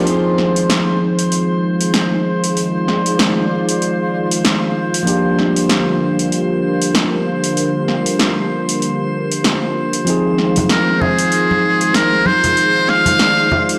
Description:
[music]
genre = sunset chillout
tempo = 96 BPM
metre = 4/4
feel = swing 58% on 16ths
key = F dorian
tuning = A4 = 443 Hz
[part]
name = barky tine electric piano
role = accompaniment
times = 0.0-13.8 s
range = F3 to Ab4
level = -21 LUFS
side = equal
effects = delay
[part]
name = drifting glass-harmonics texture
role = texture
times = 0.0-13.8 s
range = C5 to C6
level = -26 LUFS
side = equal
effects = chorus, built-in reverb
[part]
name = lush unison pad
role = sustained chords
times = 0.1-13.8 s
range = D3 to D5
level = -23 LUFS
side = equal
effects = chorus
[part]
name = deep house drum kit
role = drums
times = 0.1-13.8 s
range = hi-hat, snare drum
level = -21 LUFS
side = equal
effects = overdrive
[part]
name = congas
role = percussion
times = 10.6-13.7 s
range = none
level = -23 LUFS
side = equal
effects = none
[part]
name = trumpet with metal mute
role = melody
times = 10.7-13.8 s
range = Ab4 to F5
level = -17 LUFS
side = equal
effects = digital delay
[sound]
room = moderate lush hall reverb, RT60 2.2 s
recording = blown-out, overdriven recording, overdrive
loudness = -16 LUFS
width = mono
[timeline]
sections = 0.1-13.8 A section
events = none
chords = 0.1 Fm7; 5.1 Gm7; 10.1 Fm7

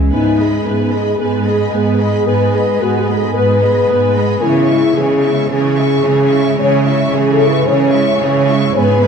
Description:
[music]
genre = cinematic, hybrid orchestral and electronic film score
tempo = 111 BPM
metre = 4/4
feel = straight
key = C# minor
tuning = A4 = 440 Hz
[part]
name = deep dark ambient pad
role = sustained chords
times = 0.0-9.1 s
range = G#3 to E5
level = -20 LUFS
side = right 1 dB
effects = chorus, built-in reverb
[part]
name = warm symphonic violin section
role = second line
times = 0.1-9.1 s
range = B4 to C#6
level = -22 LUFS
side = left 2 dB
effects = none
[part]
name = clear symphonic viola section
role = accompaniment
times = 0.1-9.1 s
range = E3 to B4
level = -21 LUFS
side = right 3 dB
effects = none
[part]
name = dark French horn section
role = sustained chords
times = 0.1-9.1 s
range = D#4 to C#5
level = -15 LUFS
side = left 4 dB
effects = none
[part]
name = rich symphonic cello section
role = bass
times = 0.1-9.1 s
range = G#2 to C#3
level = -16 LUFS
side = right 4 dB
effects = none
[sound]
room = moderate scoring stage reverb, RT60 1.9 s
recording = dark, warm production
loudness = -11 LUFS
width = side -6 dB against mid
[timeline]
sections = 0.1-9.1 A section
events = none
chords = 0.1 G#m; 4.4 C#m

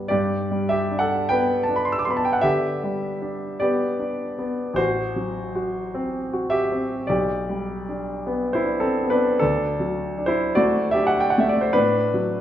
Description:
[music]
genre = classical, romantic nocturne for solo piano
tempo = 52 BPM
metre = 4/4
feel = rubato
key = G major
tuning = A4 = 440 Hz
[part]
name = clear concert grand piano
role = solo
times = 0.0-12.4 s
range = A1 to E6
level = -20 LUFS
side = equal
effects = none
[sound]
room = wet recital hall reverb, RT60 1.4 s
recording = none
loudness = -20 LUFS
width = side -11 dB against mid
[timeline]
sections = 0.1-12.4 A section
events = none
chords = 0.1 G; 4.8 F#dim/A; 7.1 G/B; 9.4 D

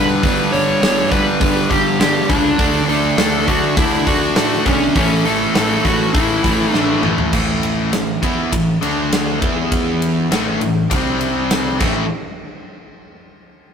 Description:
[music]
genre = hard rock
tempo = 101 BPM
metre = 4/4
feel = straight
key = unclear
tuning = A4 = 439 Hz
[part]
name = dark smooth lead guitar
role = melody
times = 0.0-7.0 s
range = C#4 to C#5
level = -19 LUFS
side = equal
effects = overdrive
[part]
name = cranked stack guitar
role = riff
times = 0.0-12.0 s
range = G2 to E4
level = -19 LUFS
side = left 6 dB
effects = overdrive
[part]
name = overdriven electric guitar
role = riff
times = 0.0-7.3 s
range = G2 to D4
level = -25 LUFS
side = right 1 dB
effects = none
[part]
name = sludgy distorted guitar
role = riff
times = 0.0-12.1 s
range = G2 to E4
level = -20 LUFS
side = right 6 dB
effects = overdrive
[part]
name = fuzz picked electric bass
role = bass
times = 0.0-12.1 s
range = E1 to A2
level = -26 LUFS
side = right 1 dB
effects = overdrive
[part]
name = huge arena drum kit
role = drums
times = 0.2-11.9 s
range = crash cymbal, hi-hat, kick drum, ride cymbal, snare drum, toms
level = -20 LUFS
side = equal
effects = none
[sound]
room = moderate stone room reverb, RT60 1.0 s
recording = rough rehearsal-room recording, tube saturation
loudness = -14 LUFS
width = side -7 dB against mid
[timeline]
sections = 0.0-7.3 A section; 7.3-12.1 B section; 12.1-13.7 C section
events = drum fill 6.7-7.3, 11.8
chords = 0.0 G; 2.6 D; 5.0 A5; 8.8 D5; 9.4 E5; 10.3 A5; 10.9 C5; 11.8 A5; 12.1 N.C.

